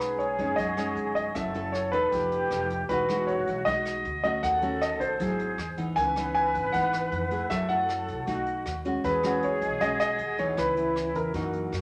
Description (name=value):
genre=bossa nova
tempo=156 BPM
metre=4/4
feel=straight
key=B major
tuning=A4 = 441 Hz
part: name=warm grand piano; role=melody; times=0.0-11.8 s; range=A#4 to G#5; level=-30 LUFS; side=equal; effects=none
part: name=mellow hollow flute section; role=second line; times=0.0-11.8 s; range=E4 to B4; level=-35 LUFS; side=equal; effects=none
part: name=nylon-string guitar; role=accompaniment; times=0.0-11.8 s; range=F#2 to A4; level=-35 LUFS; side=equal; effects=none
part: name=upright bass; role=bass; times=0.0-11.8 s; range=E1 to F#2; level=-41 LUFS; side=equal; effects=none
part: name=jazz brush drum kit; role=drums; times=0.0-11.8 s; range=hi-hat, kick drum, rim click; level=-46 LUFS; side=equal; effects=none
part: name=vibraphone with medium mallets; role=accompaniment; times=0.2-6.1, 9.6-10.6 s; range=D#5 to C#6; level=-43 LUFS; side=equal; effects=none
room=wet studio reverb, RT60 0.6 s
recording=none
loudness=-28 LUFS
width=mono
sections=0.0-11.8 A section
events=none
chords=0.0 B69; 1.3 F#m7; 2.1 F7#11; 2.9 Emaj9; 4.4 D#m7b5; 5.2 G#7alt; 6.0 C#m9; 7.5 F#m9; 8.3 B7; 9.0 E69; 10.6 C#m9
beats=0.19 0.58 0.96 | 1.35 1.74 2.12 2.51 | 2.89 3.28 3.66 4.05 | 4.43 4.82 5.20 5.58 | 5.97 6.35 6.74 7.12 | 7.50 7.89 8.27 8.65 | 9.04 9.42 9.80 10.19 | 10.57 10.95 11.34 11.72